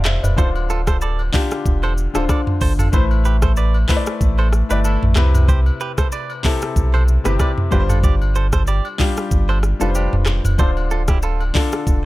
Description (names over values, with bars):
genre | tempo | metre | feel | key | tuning
afrobeats | 94 BPM | 4/4 | swing 55% on 16ths | unclear | A4 = 440 Hz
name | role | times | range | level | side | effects
clear baby grand piano | accompaniment | 0.0-12.1 s | C3 to C6 | -24 LUFS | left 4 dB | none
warm sub bass | bass | 0.0-12.1 s | D1 to C2 | -17 LUFS | equal | none
afro-pop drum kit | drums | 0.1-12.0 s | handclaps, hi-hat, kick drum, rim click, shaker, toms | -18 LUFS | equal | none
agogo bells and woodblock | percussion | 0.2-11.5 s | none | -35 LUFS | left 6 dB | none
direct-recorded clean electric guitar | riff | 0.4-11.4 s | D4 to D5 | -27 LUFS | right 6 dB | tape echo
room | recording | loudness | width
little or no reverb | none | -15 LUFS | side -18 dB against mid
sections
0.0-12.1 A section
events
none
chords
0.4 Dm7; 2.9 Amadd9; 7.7 G7sus4; 10.6 Dm7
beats
| 0.38 1.02 1.66 2.29 | 2.93 3.57 4.21 4.85 | 5.49 6.12 6.76 7.40 | 8.04 8.68 9.31 9.95 | 10.59 11.23 11.87